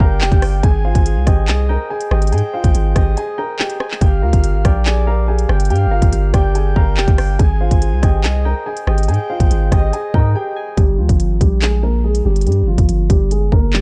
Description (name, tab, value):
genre	hip hop, drill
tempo	142 BPM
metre	4/4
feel	half-time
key	G phrygian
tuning	A4 = 439 Hz
part	dark grand piano	melody	0.0-13.8 s	F3 to Bb5	-25 LUFS	equal	low-pass filter
part	breathy flute-like synth lead	second line	0.0-10.3 s	D5 to Ab5	-32 LUFS	equal	chorus, digital delay
part	soft electric-piano-like synth keys	accompaniment	0.0-10.8 s	G4 to Ab5	-28 LUFS	equal	chorus
part	long sustained 808-style bass	bass	0.0-13.8 s	F1 to Ab2	-18 LUFS	equal	none
part	drill drum kit	drums	0.0-13.8 s	handclaps, hi-hat, kick drum, rim click	-17 LUFS	equal	vintage 12-bit sampler grit
room	digital ambience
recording	dark, warm production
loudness	-15 LUFS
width	mono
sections	0.0-10.8 A section; 10.8-13.8 B section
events	break 3.2-4.0, 10.4-10.8; filter sweep on grand piano 10.8-13.8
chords	0.0 Gm7; 0.6 Abmaj7; 4.0 Gm7; 7.4 Abmaj7; 10.8 Gm7